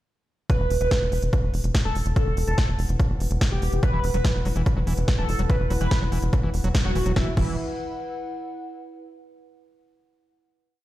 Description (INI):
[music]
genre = psychedelic trance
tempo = 144 BPM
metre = 4/4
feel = straight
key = unclear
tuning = A4 = 439 Hz
[part]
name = overdriven synth lead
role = melody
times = 0.5-7.5 s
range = E4 to B4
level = -30 LUFS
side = right 1 dB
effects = distortion, chorus, phaser, sidechain pumping, digital delay
[part]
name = big-room dance drum kit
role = drums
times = 0.5-7.5 s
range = crash cymbal, hi-hat, snare drum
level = -33 LUFS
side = equal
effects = none
[part]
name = electronic kick drum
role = drums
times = 0.5-7.5 s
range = none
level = -22 LUFS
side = equal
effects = none
[part]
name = warbly tape-like pad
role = texture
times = 1.2-8.8 s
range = E4 to F#5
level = -36 LUFS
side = left 2 dB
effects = chorus, built-in reverb, sidechain pumping
[part]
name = tight sequencer bass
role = bass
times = 0.6-7.6 s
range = D1 to F#1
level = -24 LUFS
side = equal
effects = none
[part]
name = overdriven acid bass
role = riff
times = 3.8-7.6 s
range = E3 to F#3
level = -31 LUFS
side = equal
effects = auto-pan, sidechain pumping, digital delay
[sound]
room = little or no reverb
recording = played on a big sound system in a bare room, large studio reverb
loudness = -21 LUFS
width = side -15 dB against mid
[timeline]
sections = 0.5-7.2 groove; 7.2-8.8 final chord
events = fade-in on ambient pad 0.5-7.2; band accent 6.7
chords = 0.5 E5